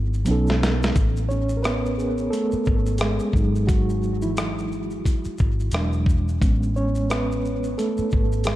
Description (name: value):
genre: lo-fi hip hop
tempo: 88 BPM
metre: 4/4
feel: swing 60% on 16ths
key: unclear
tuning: A4 = 438 Hz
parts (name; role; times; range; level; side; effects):
- mellow reed electric piano; accompaniment; 0.0-8.6 s; E3 to C#5; -24 LUFS; right 2 dB; fast tremolo, low-pass filter, tape echo
- vintage muted fingered electric bass; bass; 0.0-8.6 s; E1 to B1; -24 LUFS; equal; none
- dusty soul sampler-style drum kit; drums; 0.1-8.6 s; hi-hat, kick drum, rim click, shaker, snare drum; -23 LUFS; equal; vintage 12-bit sampler grit
room: light reverb, digital ambience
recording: echo-heavy mix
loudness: -20 LUFS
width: side -14 dB against mid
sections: 1.0-8.6 A section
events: drum fill 0.0-1.0; reed electric piano solo 1.0-8.6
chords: 0.3 B7; 1.0 Amaj7; 3.3 Emaj7/G#; 5.7 E7; 6.4 Amaj7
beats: 0.28 | 0.96 1.64 2.32 3.01 | 3.69 4.37 5.05 5.73 | 6.42 7.10 7.78 8.46